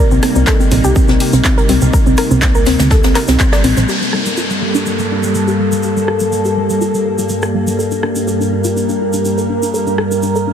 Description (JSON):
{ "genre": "progressive house", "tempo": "123 BPM", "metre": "4/4", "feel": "straight", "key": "G minor", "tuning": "A4 = 440 Hz", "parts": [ { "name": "evolving wavetable pad", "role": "sustained chords", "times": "0.0-10.5 s", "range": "G2 to Bb4", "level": "-16 LUFS", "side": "equal", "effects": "chorus, built-in reverb, sidechain pumping" }, { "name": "soft round pluck", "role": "arpeggios", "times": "0.0-10.5 s", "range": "G3 to D5", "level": "-18 LUFS", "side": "equal", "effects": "chorus, sidechain pumping, ping-pong delay" }, { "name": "plucky analog bass", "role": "bass", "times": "0.1-3.9 s", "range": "Bb1 to D2", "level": "-14 LUFS", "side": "equal", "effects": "sidechain pumping" }, { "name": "egg shaker", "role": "percussion", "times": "0.1-10.4 s", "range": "none", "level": "-27 LUFS", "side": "right 1 dB", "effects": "none" }, { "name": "big-room dance drum kit", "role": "drums", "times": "0.2-10.1 s", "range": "handclaps, hi-hat, rim click", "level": "-22 LUFS", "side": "equal", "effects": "low-pass filter on snare, low-pass filter on hats, low-pass filter on room" }, { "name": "soft brush drum kit", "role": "drums", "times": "0.2-3.9 s", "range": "hi-hat, shaker, snare drum", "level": "-26 LUFS", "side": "left 1 dB", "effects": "sidechain pumping on hats, high-pass filter on hats, high-pass filter on snare, sidechain pumping on perc, high-pass filter on perc, high-pass filter on room" }, { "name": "electronic kick drum", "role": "drums", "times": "0.5-3.5 s", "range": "none", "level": "-12 LUFS", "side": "equal", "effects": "none" }, { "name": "downlifter", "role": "sound effects", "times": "3.9-7.8 s", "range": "none", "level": "-24 LUFS", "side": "equal", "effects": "none" } ], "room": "light reverb, studio reverb", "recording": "heavily compressed radio sound, multiband compression", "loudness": "-11 LUFS", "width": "side -8 dB against mid", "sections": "0.0-3.9 A section; 3.9-10.5 B section", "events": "band accent 3.4; filter sweep on synth pluck 3.9-10.5", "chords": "0.0 Cm7; 3.9 Gmadd9" }